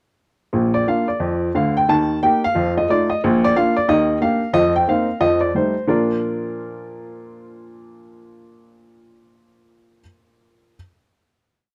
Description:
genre	jazz, stride piano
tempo	180 BPM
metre	4/4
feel	swing 62% on 8ths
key	Bb major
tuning	A4 = 437 Hz
part	warm upright piano	solo	0.5-10.8 s	Bb1 to A5	-19 LUFS	equal	none
room	moderate club reverb, RT60 0.9 s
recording	close, detailed microphones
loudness	-18 LUFS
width	mono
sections	0.5-5.9 A section; 5.9-8.6 final chord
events	none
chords	0.5 Bb; 1.9 Eb; 2.6 F7; 3.2 Bb; 3.9 Ebmaj7; 4.6 F7sus4; 5.2 F9; 5.9 Bb

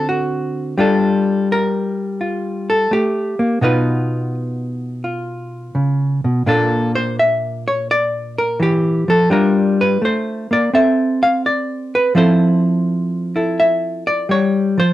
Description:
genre	solo jazz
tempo	84 BPM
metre	4/4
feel	swing 68% on 8ths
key	unclear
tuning	A4 = 441 Hz
part	hollow-body jazz guitar	solo	0.0-14.9 s	Bb2 to F5	-15 LUFS	equal	none
room	light reverb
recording	dark, warm production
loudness	-15 LUFS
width	side -14 dB against mid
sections	0.0-14.9 A section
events	hollow-body jazz guitar solo 0.0-14.9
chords	0.0 D7; 0.8 Gm9; 3.6 B; 6.5 Bb; 9.3 Gm7; 10.7 Cmaj13; 12.1 Fmaj7

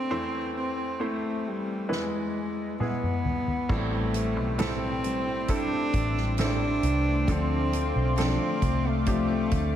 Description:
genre	pop ballad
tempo	67 BPM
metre	4/4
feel	straight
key	A minor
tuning	A4 = 440 Hz
part	warm cello	melody	0.0-9.8 s	G3 to D4	-29 LUFS	equal	ping-pong delay
part	bright grand piano	accompaniment	0.0-9.8 s	E2 to D5	-32 LUFS	right 1 dB	none
part	soft-mallet drum kit	drums	1.9-9.7 s	crash cymbal, hi-hat, kick drum, snare drum, toms	-31 LUFS	equal	none
part	chorused pulse-width pad	sustained chords	3.7-9.8 s	A3 to E6	-34 LUFS	left 5 dB	none
part	picked steel-string acoustic guitar	arpeggios	3.7-9.8 s	A2 to F4	-36 LUFS	left 3 dB	none
part	vintage muted fingered electric bass	bass	3.7-9.8 s	A1 to D2	-28 LUFS	equal	none
room	moderate plate reverb, RT60 3.5 s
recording	dreamy mix soaked in reverb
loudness	-25 LUFS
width	side -10 dB against mid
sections	0.0-3.7 A section; 3.7-9.8 B section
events	drum fill 1.9-3.7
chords	0.1 Am/E; 1.9 E; 3.7 Am7; 7.3 Dm7

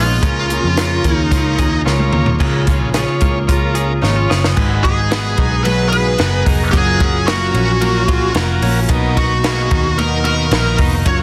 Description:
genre	jangly indie pop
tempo	111 BPM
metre	4/4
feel	straight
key	unclear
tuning	A4 = 439 Hz
part	high-gain lead guitar	melody	0.0-11.1 s	E#4 to C#5	-22 LUFS	equal	distortion, delay
part	combo organ	accompaniment	0.0-11.2 s	B3 to A#5	-26 LUFS	equal	none
part	picked steel-string acoustic guitar	accompaniment	0.0-11.2 s	G#2 to G#4	-28 LUFS	equal	none
part	twelve-string electric guitar	arpeggios	0.0-11.2 s	G#2 to G#4	-24 LUFS	equal	none
part	vintage muted picked electric bass	bass	0.0-11.2 s	E#1 to E#2	-20 LUFS	equal	none
part	compact cocktail drum kit	drums	0.2-11.2 s	crash cymbal, hi-hat, kick drum, ride cymbal, snare drum, toms	-20 LUFS	equal	none
room	light reverb, small room ambience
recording	dense, heavily limited modern master, vinyl crackle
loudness	-15 LUFS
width	mono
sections	0.0-2.4 A section; 2.4-4.6 B section; 4.6-11.2 C section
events	transistor combo organ fill 1.3-2.4; drum fill 1.9-2.4, 4.0-4.6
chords	0.2 C#6; 4.6 G#m7; 6.7 F#maj7; 8.9 Bmaj7

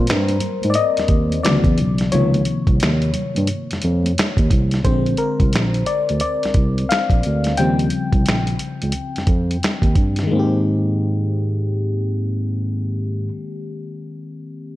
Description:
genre	R&B, neo-soul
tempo	88 BPM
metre	4/4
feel	swing 61% on 16ths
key	Ab major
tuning	A4 = 440 Hz
part	FM electric piano	accompaniment	0.0-14.8 s	C3 to G5	-22 LUFS	left 3 dB	chorus
part	barky tine electric piano	bass	0.0-13.3 s	Bb1 to Ab2	-20 LUFS	right 1 dB	none
part	dusty soul sampler-style drum kit	drums	0.1-10.3 s	finger snaps, hi-hat, kick drum, snare drum	-19 LUFS	equal	none
part	congas	percussion	0.3-4.5 s	none	-32 LUFS	right 6 dB	none
room	small room ambience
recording	dark, warm production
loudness	-16 LUFS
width	side -15 dB against mid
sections	0.0-10.3 A section; 10.3-13.0 B section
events	FM electric piano solo 0.0-10.3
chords	0.0 Abmaj9 (rootless); 1.4 Dmaj13; 2.1 Dbmaj13; 4.8 Bb9; 7.6 Eb13; 10.3 Abmaj9

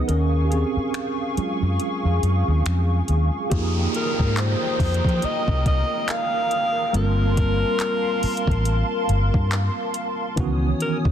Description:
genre	contemporary R&B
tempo	70 BPM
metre	4/4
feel	swing 58% on 16ths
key	unclear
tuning	A4 = 439 Hz
part	tine electric piano	accompaniment	0.0-11.1 s	Eb3 to Bb4	-27 LUFS	right 3 dB	medium stereo tremolo
part	hollow soft pad	sustained chords	0.0-11.1 s	Cb4 to Eb6	-28 LUFS	left 1 dB	ensemble chorus
part	vintage muted fingered electric bass	bass	0.1-11.1 s	G1 to F3	-21 LUFS	equal	none
part	smooth R&B drum kit	drums	0.1-11.1 s	finger snaps, handclaps, hi-hat, kick drum	-25 LUFS	equal	vintage 12-bit sampler grit
part	downlifter	sound effects	3.5-10.4 s	none	-33 LUFS	right 1 dB	none
part	breathy alto saxophone	melody	4.0-11.0 s	Bb4 to F5	-25 LUFS	left 1 dB	ping-pong delay
room	little or no reverb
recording	dense, heavily limited modern master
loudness	-19 LUFS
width	side -10 dB against mid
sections	0.0-3.5 A section; 3.5-11.1 B section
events	tine electric piano solo 0.0-3.5; kick muted 0.1-3.5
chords	0.1 Ebm11; 3.5 Fm11; 6.9 Gm11; 10.4 Dbm11

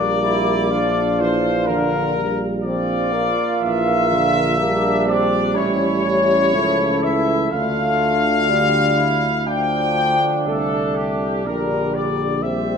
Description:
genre	classical, hymn-like piece for brass band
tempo	62 BPM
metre	4/4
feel	rubato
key	D minor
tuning	A4 = 441 Hz
part	clear trumpet section	melody	0.0-12.8 s	G4 to G5	-20 LUFS	left 5 dB	none
part	warm flugelhorn	second line	0.0-12.8 s	C4 to F4	-24 LUFS	right 8 dB	none
part	clear euphonium	accompaniment	0.0-12.8 s	F3 to D4	-24 LUFS	left 1 dB	none
part	mellow euphonium	accompaniment	0.0-12.8 s	D3 to G3	-26 LUFS	right 4 dB	none
part	dark tuba	bass	0.0-12.8 s	A1 to D2	-24 LUFS	equal	none
room	wet recital hall reverb, RT60 1.7 s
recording	minimal, uncompressed stereo recording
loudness	-16 LUFS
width	side -6 dB against mid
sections	0.0-12.8 A section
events	none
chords	0.0 Bb; 5.6 A; 7.5 Dm; 11.5 Gm/Bb

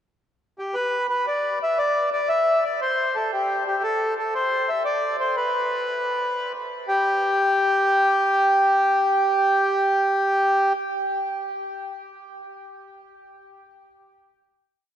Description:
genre	celtic folk, Celtic slip jig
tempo	117 BPM (dotted quarters)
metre	9/8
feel	straight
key	G major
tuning	A4 = 440 Hz
part	accordion	solo	0.6-10.7 s	G4 to E5	-20 LUFS	equal	slapback echo
room	wet huge ambient reverb, RT60 7.7 s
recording	in a vast, echoing space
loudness	-20 LUFS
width	side -10 dB against mid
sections	0.0-0.7 pickup bar; 0.7-6.9 A section; 6.9-10.0 final note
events	none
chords	none

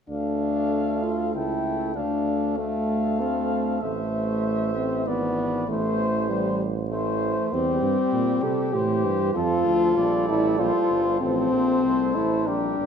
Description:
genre	classical, brass quintet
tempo	97 BPM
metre	3/4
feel	rubato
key	D minor, F major from 7.5 s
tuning	A4 = 437 Hz
part	mellow trumpet	melody	0.1-12.9 s	G4 to G5	-31 LUFS	left 5 dB	none
part	warm flugelhorn	second line	0.1-12.9 s	G4 to C5	-32 LUFS	right 8 dB	none
part	bright trombone	accompaniment	0.1-12.9 s	E3 to A3	-32 LUFS	right 5 dB	none
part	clear French horn	accompaniment	0.1-12.9 s	G3 to A4	-24 LUFS	left 3 dB	none
part	clear tuba	bass	0.1-12.9 s	G1 to C3	-28 LUFS	right 5 dB	none
room	wet concert hall reverb, RT60 1.9 s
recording	minimal, uncompressed stereo recording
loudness	-21 LUFS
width	side -7 dB against mid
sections	0.1-12.9 A section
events	none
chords	0.1 Dm; 1.3 A7/C#; 2.0 Dm; 3.8 Am; 5.1 E7/G#; 5.7 Am; 7.5 C/E; 9.4 F; 11.2 F/A

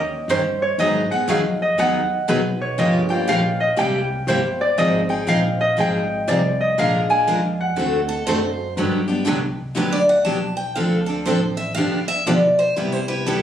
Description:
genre	acoustic string swing (jazz manouche)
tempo	120 BPM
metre	4/4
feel	swing 64% on 8ths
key	G major from 8.8 s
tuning	A4 = 440 Hz
part	Celtic harp	melody	0.0-9.2 s	Cb5 to Ab5	-20 LUFS	equal	none
part	upright bass	bass	0.0-13.4 s	G1 to Ab2	-27 LUFS	right 1 dB	none
part	picked steel-string acoustic guitar	accompaniment	0.3-13.4 s	C3 to Bb4	-23 LUFS	left 3 dB	none
part	picked steel-string acoustic guitar	accompaniment	0.3-13.4 s	C3 to Bb4	-25 LUFS	right 3 dB	none
part	picked steel-string acoustic guitar	second line	8.1-13.4 s	A4 to A5	-21 LUFS	equal	none
room	moderate studio reverb, RT60 0.8 s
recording	recorded on a phone in the room, club reverb, compression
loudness	-17 LUFS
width	side -10 dB against mid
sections	0.0-8.8 A section; 8.8-13.4 B section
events	steel-string acoustic guitar solo 8.8-13.4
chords	0.0 Eb7; 0.8 Abm7; 2.8 Gm7b5; 3.8 C7; 4.8 Fm7; 6.8 Bb7; 7.8 D7; 8.8 Gmaj7; 10.8 Dm7; 11.8 G7; 12.8 Cmaj7

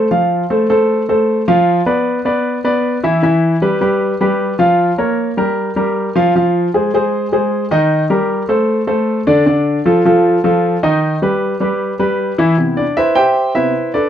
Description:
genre	jazz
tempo	154 BPM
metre	4/4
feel	straight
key	C major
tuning	A4 = 440 Hz
part	warm grand piano	solo	0.0-14.1 s	C3 to G5	-12 LUFS	equal	none
room	moderate studio reverb, RT60 0.7 s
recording	dark, warm production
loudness	-12 LUFS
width	side -10 dB against mid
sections	0.1-12.6 A section; 12.6-14.1 B section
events	grand piano solo 12.6-14.1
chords	0.1 F; 1.7 Dm69; 3.2 Em; 4.8 Gm7b5; 5.6 Fsus24; 6.3 Fm7; 7.9 Cm7; 8.7 Amadd11; 9.5 Dm; 11.0 Gaug; 12.6 Cmaj7

